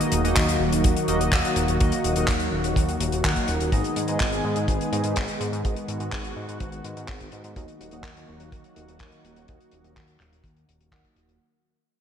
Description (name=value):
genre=italo disco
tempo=125 BPM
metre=4/4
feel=straight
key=unclear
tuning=A4 = 440 Hz
part: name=lush unison pad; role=sustained chords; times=0.0-11.4 s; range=D#3 to G#4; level=-28 LUFS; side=equal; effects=chorus
part: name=chorused polysynth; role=stabs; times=0.0-11.4 s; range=A#3 to F#5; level=-29 LUFS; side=right 1 dB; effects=ping-pong delay
part: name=damped 70s drum kit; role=drums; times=0.0-11.4 s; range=handclaps, hi-hat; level=-29 LUFS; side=left 1 dB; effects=low-pass filter on hats, low-pass filter on snare, low-pass filter on room
part: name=fat analog bass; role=bass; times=0.1-11.4 s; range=D#1 to G#2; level=-29 LUFS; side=equal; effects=none
part: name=kick drum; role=drums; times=0.4-11.1 s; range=none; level=-25 LUFS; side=equal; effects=none
room=moderate lush hall reverb, RT60 2.0 s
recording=bright 1980s-style digital production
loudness=-21 LUFS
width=side -8 dB against mid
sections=0.0-11.4 A section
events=fade-out 0.0-11.4; filter sweep on analog polysynth 0.0-11.4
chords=0.0 D#m; 3.7 G#m; 7.6 D#m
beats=0.36 0.84 1.32 | 1.80 2.28 2.76 3.24 | 3.72 4.20 4.68 5.16 | 5.64 6.12 6.60 7.08 | 7.56 8.04 8.52 9.00 | 9.48 9.96 10.44 10.92